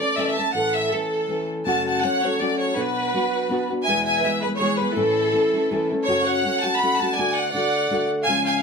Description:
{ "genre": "mexican folk, mariachi", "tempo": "164 BPM", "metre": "3/4", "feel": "swing 55% on 8ths, rubato", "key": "F# minor", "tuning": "A4 = 438 Hz", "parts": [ { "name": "clear symphonic violin section", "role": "melody", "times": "0.0-8.6 s", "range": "A4 to B5", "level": "-22 LUFS", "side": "left 1 dB", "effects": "none" }, { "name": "nylon-string guitar", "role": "accompaniment", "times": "0.0-8.6 s", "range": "E2 to A4", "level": "-24 LUFS", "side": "left 1 dB", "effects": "none" }, { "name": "dark fiddle", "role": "second line", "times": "1.7-8.6 s", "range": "E4 to F#5", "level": "-28 LUFS", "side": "right 4 dB", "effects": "none" } ], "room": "moderate small room reverb, RT60 0.5 s", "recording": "none", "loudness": "-19 LUFS", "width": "side -5 dB against mid", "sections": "0.0-1.7 A section; 1.7-8.6 B section", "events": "none", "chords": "0.0 A; 1.7 F#m; 2.8 Bm; 3.9 E; 5.0 A; 6.1 F#m; 7.2 D" }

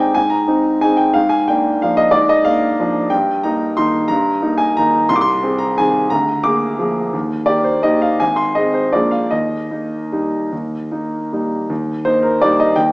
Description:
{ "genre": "classical, piano waltz", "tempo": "145-193 BPM", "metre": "3/4", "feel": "rubato", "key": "Eb major", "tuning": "A4 = 440 Hz", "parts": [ { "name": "clear concert grand piano", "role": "solo", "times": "0.0-12.9 s", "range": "Ab1 to D6", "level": "-14 LUFS", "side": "equal", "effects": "none" } ], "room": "moderate recital hall reverb, RT60 1.5 s", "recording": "small speaker sound", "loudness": "-14 LUFS", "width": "side -26 dB against mid", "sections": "0.0-11.7 A section; 11.7-12.9 A section", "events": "none", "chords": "0.0 Ab; 1.1 Bb7/Ab; 3.1 Eb/G; 5.1 Ab/C; 6.1 Bb7/D; 7.1 Eb; 8.2 Ab; 8.9 Bb7; 9.3 Eb" }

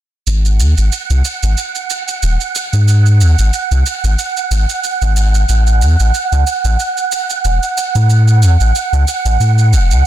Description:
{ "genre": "organic downtempo", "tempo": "92 BPM", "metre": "4/4", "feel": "swing 55% on 16ths", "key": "unclear", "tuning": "A4 = 440 Hz", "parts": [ { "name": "warm sub bass", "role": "bass", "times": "0.3-10.0 s", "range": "D#1 to A2", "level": "-10 LUFS", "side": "equal", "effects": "none" }, { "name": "shaker", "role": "drums", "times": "0.3-10.0 s", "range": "none", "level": "-22 LUFS", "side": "right 5 dB", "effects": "none" }, { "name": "wind-like tuned noise texture", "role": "texture", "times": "0.6-10.1 s", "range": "F#5", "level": "-19 LUFS", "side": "right 6 dB", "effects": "built-in reverb" } ], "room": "little or no reverb", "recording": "dense, heavily limited modern master", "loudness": "-11 LUFS", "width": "side -13 dB against mid", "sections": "0.3-10.1 A section", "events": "filter sweep on sub bass 0.3-10.1", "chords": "0.3 G#7(no3); 5.5 A5" }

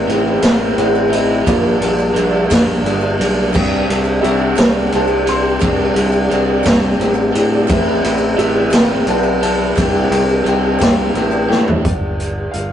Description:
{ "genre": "indie rock", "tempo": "58 BPM (dotted quarters)", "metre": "6/8", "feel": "straight", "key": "C major", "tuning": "A4 = 440 Hz", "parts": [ { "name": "tonewheel organ", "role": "sustained chords", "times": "0.0-11.8 s", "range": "E4 to E6", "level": "-36 LUFS", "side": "equal", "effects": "none" }, { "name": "electric guitar through a small old amp", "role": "riff", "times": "0.0-11.8 s", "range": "E3 to G4", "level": "-20 LUFS", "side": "left 3 dB", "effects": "spring reverb" }, { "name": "fingered electric bass", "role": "bass", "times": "0.0-12.7 s", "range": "G1 to A2", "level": "-21 LUFS", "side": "equal", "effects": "none" }, { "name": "overdriven electric guitar", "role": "riff", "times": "0.1-11.8 s", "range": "E3 to E4", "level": "-25 LUFS", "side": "right 6 dB", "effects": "none" }, { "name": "raw garage drum kit", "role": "drums", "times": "0.1-12.7 s", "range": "crash cymbal, hi-hat, kick drum, ride cymbal, snare drum, toms", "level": "-15 LUFS", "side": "equal", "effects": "none" }, { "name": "group handclap", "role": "percussion", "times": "0.3-11.6 s", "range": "none", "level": "-36 LUFS", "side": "right 5 dB", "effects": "none" }, { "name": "dark upright piano", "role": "melody", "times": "0.4-12.7 s", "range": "F4 to C6", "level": "-22 LUFS", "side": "right 2 dB", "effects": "none" } ], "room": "light reverb", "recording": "rough rehearsal-room recording, tube saturation, nothing above 10.4 kHz", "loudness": "-12 LUFS", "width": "side -10 dB against mid", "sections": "0.0-11.8 A section", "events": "drum fill 11.5-11.8", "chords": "0.0 Am; 1.5 Gm/Bb; 3.5 Csus2; 7.7 Am; 9.8 Cadd9; 11.8 G5" }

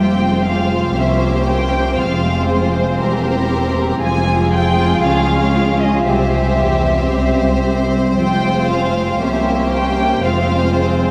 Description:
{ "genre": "classical, dramatic, fast romantic movement for symphony orchestra", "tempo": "117 BPM", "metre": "4/4", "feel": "straight", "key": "F minor", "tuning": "A4 = 438 Hz", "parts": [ { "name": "rich symphonic violin section", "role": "melody", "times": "0.0-11.1 s", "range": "C5 to Ab5", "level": "-24 LUFS", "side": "equal", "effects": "none" }, { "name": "rich symphonic violin section", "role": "second line", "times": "0.0-11.1 s", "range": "F4 to C5", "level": "-23 LUFS", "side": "equal", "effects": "none" }, { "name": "warm symphonic viola section", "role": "accompaniment", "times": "0.0-11.1 s", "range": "G3 to Db4", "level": "-23 LUFS", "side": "equal", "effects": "none" }, { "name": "concert harp", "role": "arpeggios", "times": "0.0-11.1 s", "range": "C3 to C5", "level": "-23 LUFS", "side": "equal", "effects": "none" }, { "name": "rich studio cello section", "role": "bass", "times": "0.0-11.1 s", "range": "C2 to F2", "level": "-24 LUFS", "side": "equal", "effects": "none" }, { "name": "warm studio double bass section", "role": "bass", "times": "0.0-11.1 s", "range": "E1 to Db2", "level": "-24 LUFS", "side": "equal", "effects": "none" } ], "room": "wet cathedral reverb, RT60 6.8 s", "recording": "in a vast, echoing space", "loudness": "-16 LUFS", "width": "mono", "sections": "0.0-11.1 A section", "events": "none", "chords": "0.0 Fm; 1.0 C7b9; 2.0 Fm; 3.0 C7/E; 4.0 Fm; 5.0 Db; 6.1 C; 8.2 Fm; 9.2 C7b9; 10.3 Fm" }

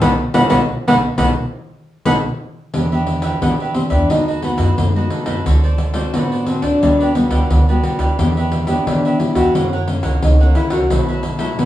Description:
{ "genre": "samba and choro", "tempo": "88 BPM", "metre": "4/4", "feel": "straight", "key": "E minor", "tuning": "A4 = 436 Hz", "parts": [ { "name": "breathy tenor saxophone", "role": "melody", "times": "0.0-11.7 s", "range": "B3 to F#4", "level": "-18 LUFS", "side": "equal", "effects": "none" }, { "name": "cavaquinho", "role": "accompaniment", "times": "0.0-11.7 s", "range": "D4 to F#5", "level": "-25 LUFS", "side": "right 4 dB", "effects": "none" }, { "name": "nylon-string guitar", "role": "accompaniment", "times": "0.0-11.7 s", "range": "F#2 to G4", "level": "-22 LUFS", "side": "left 2 dB", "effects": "none" }, { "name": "upright bass", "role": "bass", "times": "0.0-11.7 s", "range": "B1 to E3", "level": "-18 LUFS", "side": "equal", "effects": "none" }, { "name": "pandeiro", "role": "percussion", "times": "0.0-11.7 s", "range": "none", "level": "-22 LUFS", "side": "left 2 dB", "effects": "none" } ], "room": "wet studio reverb, RT60 0.6 s", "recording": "heard from further back in the room, studio reverb", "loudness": "-14 LUFS", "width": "side -13 dB against mid", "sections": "0.0-2.7 A section; 2.7-11.7 B section", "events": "band accent 0.0-2.7", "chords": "0.0 B7; 2.7 Em7; 4.1 B7/D#; 5.5 D7; 6.8 Gmaj7/D; 8.2 Em7; 9.6 F#7; 10.9 B7sus4" }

